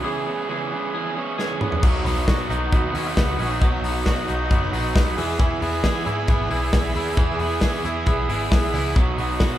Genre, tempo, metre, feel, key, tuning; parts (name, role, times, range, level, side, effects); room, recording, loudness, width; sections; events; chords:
jangly indie pop; 135 BPM; 4/4; straight; B major; A4 = 440 Hz
crunchy overdriven guitar; accompaniment; 0.0-9.6 s; B2 to G#4; -26 LUFS; right 4 dB
twangy electric guitar; arpeggios; 0.0-9.6 s; E3 to G#4; -28 LUFS; left 3 dB
modern studio drum kit; drums; 1.4-9.5 s; crash cymbal, hi-hat, kick drum, snare drum, toms; -22 LUFS; equal
string machine, violins; sustained chords; 1.8-9.6 s; F#4 to B5; -33 LUFS; left 1 dB; ensemble chorus
vintage muted picked electric bass; bass; 1.8-9.6 s; F#1 to E3; -27 LUFS; equal
light reverb; band playing live in one room; -19 LUFS; side -12 dB against mid
0.0-1.8 A section; 1.8-9.6 B section
break 0.0-1.8; drum fill 1.4-1.8
0.0 C#m7; 1.8 B; 5.2 E; 9.0 B